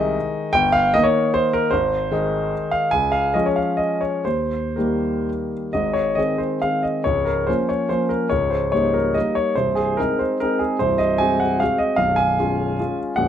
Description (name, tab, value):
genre	classical, romantic triple-time dance for piano with dotted rhythms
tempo	113-164 BPM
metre	3/4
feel	rubato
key	Ab major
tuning	A4 = 441 Hz
part	clear concert grand piano	solo	0.0-13.3 s	Bb0 to Ab5	-18 LUFS	equal	none
room	light reverb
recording	none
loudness	-18 LUFS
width	side -9 dB against mid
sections	0.0-5.7 A section; 5.7-13.3 B section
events	none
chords	0.0 Ab/C; 0.5 Eb/G; 1.7 Ab; 2.9 Db; 4.3 Eb; 5.7 Ab; 7.1 Bbm/Db; 8.3 Eb7/Db; 9.6 Ab/C; 10.8 Ab7/C; 12.0 Db7/Cb